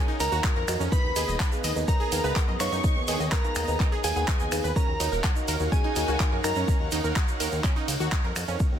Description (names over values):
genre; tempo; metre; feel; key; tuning
progressive house; 125 BPM; 4/4; straight; Eb minor; A4 = 440 Hz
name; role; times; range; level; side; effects
glassy synth bell; melody; 0.0-6.7 s; Ab4 to Db6; -32 LUFS; equal; chorus, vintage 12-bit sampler grit, sidechain pumping, digital delay
warm studio violin section; second line; 0.0-6.7 s; Ab5 to Db6; -36 LUFS; right 1 dB; sidechain pumping, digital delay
supersaw pad; sustained chords; 0.0-8.8 s; Cb4 to Gb5; -36 LUFS; equal; sidechain pumping
deep mellow chord stab; stabs; 0.0-6.6 s; Eb4 to Gb5; -34 LUFS; equal; chorus, sidechain pumping, digital delay
analog pluck; arpeggios; 0.1-8.5 s; Db4 to Eb5; -34 LUFS; right 3 dB; chorus, sidechain pumping, digital delay
fat analog bass; bass; 0.2-8.8 s; Eb1 to Gb2; -30 LUFS; equal; sidechain pumping
deep house drum kit; drums; 0.2-8.5 s; finger snaps, handclaps, hi-hat, ride cymbal; -32 LUFS; equal; soft clipping on snare
egg shaker; percussion; 0.2-8.7 s; none; -38 LUFS; right 7 dB; none
electronic kick drum; drums; 0.4-8.7 s; none; -25 LUFS; equal; none
room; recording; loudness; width
little or no reverb; dense, heavily limited modern master; -23 LUFS; side -9 dB against mid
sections
0.0-8.8 A section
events
none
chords
0.0 Ebm7; 0.9 Abm/Eb; 4.8 Ebm7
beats
0.44 | 0.92 1.40 1.88 2.36 | 2.84 3.32 3.80 4.28 | 4.76 5.24 5.72 6.20 | 6.68 7.16 7.64 8.12 | 8.60